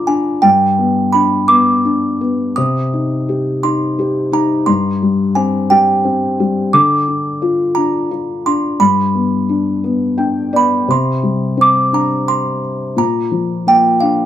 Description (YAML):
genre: children's music, lullaby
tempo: 58 BPM (dotted quarters)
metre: 6/8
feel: rubato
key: C minor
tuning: A4 = 440 Hz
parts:
  - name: music box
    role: melody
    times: 0.0-14.3 s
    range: F5 to Eb6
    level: -15 LUFS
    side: right 3 dB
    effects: none
  - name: felt-muted upright piano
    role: accompaniment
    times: 0.0-14.3 s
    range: G2 to G5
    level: -15 LUFS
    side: left 3 dB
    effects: none
room: little or no reverb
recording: dry, close 1970s-style studio recording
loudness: -12 LUFS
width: side -11 dB against mid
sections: 0.0-10.9 A section; 10.9-14.3 B section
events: felt piano fill 9.8-10.9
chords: 0.4 G; 2.6 Cm; 4.7 Gsus4; 6.7 Dm; 8.8 G; 10.9 Csus2; 13.0 Bb